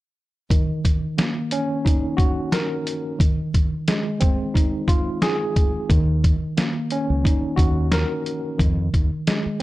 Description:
hip hop, boom-bap hip-hop; 89 BPM; 4/4; swing 54% on 16ths; Eb dorian; A4 = 440 Hz
tine electric piano; accompaniment; 0.5-9.6 s; Eb3 to Bb4; -24 LUFS; equal; overdrive, fast stereo tremolo, cassette tape, high-pass filter, low-pass filter
trip hop sampler-style drum kit; drums; 0.5-9.6 s; hi-hat, kick drum, snare drum; -19 LUFS; equal
deep dub fingered electric bass; bass; 5.9-9.5 s; Db2 to F2; -22 LUFS; equal
little or no reverb; dry, gritty hardware recording; -19 LUFS; side -17 dB against mid
0.5-9.6 A section
0.5 Ebm7; 3.2 Fm7; 5.9 Ebm7; 8.6 Fm7

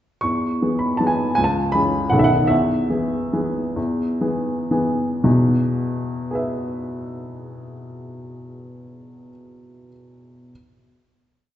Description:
classical, piano waltz; 110-166 BPM; 3/4; rubato; E major; A4 = 440 Hz
warm upright piano; solo; 0.2-10.5 s; B1 to C#6; -19 LUFS; equal
wet recital hall reverb, RT60 1.7 s; heard from further back in the room, nothing above 7.8 kHz; -18 LUFS; side -11 dB against mid
0.2-5.2 A section; 5.2-8.4 final chord
slowing down 1.9-5.2
0.2 E; 1.4 C#m7; 2.1 B69; 2.5 E

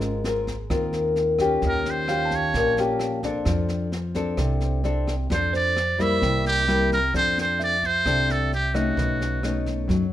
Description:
bossa nova; 131 BPM; 4/4; straight; F major; A4 = 441 Hz
bell-like tine electric piano; accompaniment; 0.0-9.0 s; Db4 to A5; -32 LUFS; right 6 dB
nylon-string guitar; accompaniment; 0.0-10.1 s; Bb2 to Bb4; -25 LUFS; left 3 dB
upright bass; bass; 0.0-10.1 s; Ab1 to F#2; -28 LUFS; right 1 dB
jazz brush drum kit; drums; 0.0-10.0 s; kick drum, rim click, snare drum; -32 LUFS; right 1 dB
trumpet with metal mute; melody; 1.7-9.7 s; Gb4 to E5; -23 LUFS; right 1 dB
light reverb; minimal, uncompressed stereo recording; -21 LUFS; side -12 dB against mid
0.0-7.1 A section; 7.1-10.1 B section
muted trumpet solo 0.0-7.1
0.0 Ab69; 1.6 Eb9; 3.5 F6; 6.2 C7; 7.1 F6; 9.0 B9

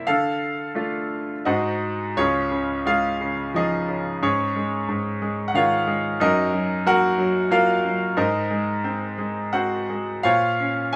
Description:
classical, lyrical solo piano; 82-93 BPM; 3/4; rubato; Db major; A4 = 440 Hz
bright grand piano; solo; 0.0-11.0 s; Db2 to Ab5; -23 LUFS; equal
light reverb; -23 LUFS; mono
0.0-2.2 A section; 2.2-11.0 B section
grand piano fill 1.1-2.2
0.1 Dm; 1.5 Ab7; 2.2 Dbadd9; 4.2 Absus4; 6.2 Ebm/Gb; 8.2 Abadd9; 10.2 Bbmadd9

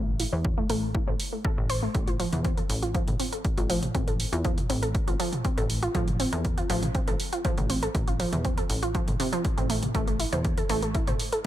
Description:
melodic techno; 120 BPM; 4/4; straight; A4 = 440 Hz
wide unison pluck; arpeggios; 0.0-11.4 s; C3 to C5; -30 LUFS; right 1 dB; vintage 12-bit sampler grit, sidechain pumping, dub echo
plucky analog bass; bass; 0.0-11.2 s; A1 to E2; -30 LUFS; equal; sidechain pumping
punchy analog drum machine; drums; 0.2-11.4 s; hi-hat, toms; -34 LUFS; right 1 dB; sidechain pumping on hats, sidechain pumping on toms
electronic kick drum; drums; 0.4-11.0 s; -28 LUFS; equal
little or no reverb; -24 LUFS; side -13 dB against mid
0.0-11.5 A section
0.0 A5; 1.9 F/A; 9.9 A5

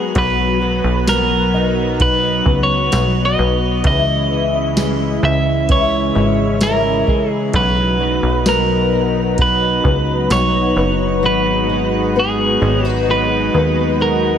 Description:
dream pop; 65 BPM; 4/4; straight; B major; A4 = 440 Hz
electric guitar at the edge of break-up; melody; 0.0-14.4 s; G#4 to E5; -18 LUFS; right 2 dB; tape echo
lush unison pad; sustained chords; 0.0-14.4 s; C#3 to F#4; -21 LUFS; equal; chorus
fingerpicked twelve-string acoustic guitar; arpeggios; 0.0-14.4 s; E3 to D#4; -20 LUFS; left 6 dB; ensemble chorus, tape echo
plucky analog bass; bass; 0.2-14.4 s; F#1 to D#2; -20 LUFS; right 1 dB
soft vintage rhythm box; drums; 0.2-10.5 s; kick drum, ride cymbal, snare drum, tambourine; -20 LUFS; right 1 dB
light reverb; -13 LUFS; side -8 dB against mid
0.0-14.4 A section
0.2 B; 3.8 C#madd9; 7.5 B; 11.2 G#m7

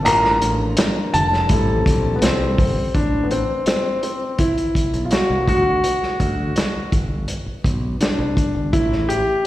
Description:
lush 1970s-style soul; 83 BPM; 4/4; straight; A dorian; A4 = 440 Hz
warm concert grand piano; melody; 0.0-9.5 s; B3 to Bb5; -20 LUFS; left 1 dB; plate reverb, slapback echo
warm grand piano; accompaniment; 0.0-3.0 s; G3 to Bb4; -25 LUFS; left 1 dB; plate reverb, slapback echo
mellow tonewheel organ; sustained chords; 0.0-2.9 s; F3 to D4; -29 LUFS; equal
modern bright fingered electric bass; bass; 0.0-9.2 s; F1 to D2; -22 LUFS; equal
vintage drum kit; drums; 0.1-9.3 s; hi-hat, kick drum, snare drum; -21 LUFS; equal
congas; percussion; 0.1-2.8 s; -30 LUFS; right 5 dB
light reverb; live gig heard through the venue's PA, recital hall reverb; -17 LUFS; side -15 dB against mid
0.0-2.9 A section; 2.9-9.5 B section
0.1 Bbmaj7/A; 1.5 Am7; 2.9 Am; 5.5 D; 6.9 G; 8.7 A7(no3)

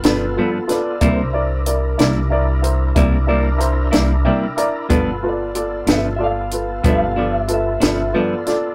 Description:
slow blues; 62 BPM (dotted quarters); 12/8; straight; G mixolydian; A4 = 440 Hz
electric guitar through a small old amp; melody; 0.0-8.7 s; B4 to F5; -27 LUFS; equal
clear upright piano; accompaniment; 0.0-8.7 s; E4 to Bb5; -24 LUFS; equal
overdriven tonewheel organ; sustained chords; 0.0-8.7 s; B3 to Bb4; -31 LUFS; equal; chorus vibrato, slow rotary speaker
compact cocktail drum kit; drums; 0.0-8.6 s; hi-hat, kick drum, snare drum; -21 LUFS; equal
clean electric guitar; accompaniment; 0.1-8.3 s; G2 to E4; -23 LUFS; equal; tremolo
upright bass; bass; 0.1-8.1 s; G1 to C2; -23 LUFS; equal
light reverb; rough rehearsal-room recording, tube saturation; -18 LUFS; mono
0.0-8.7 A section
upright piano fill 3.9-4.9
0.0 G7; 1.0 C7; 4.9 G7

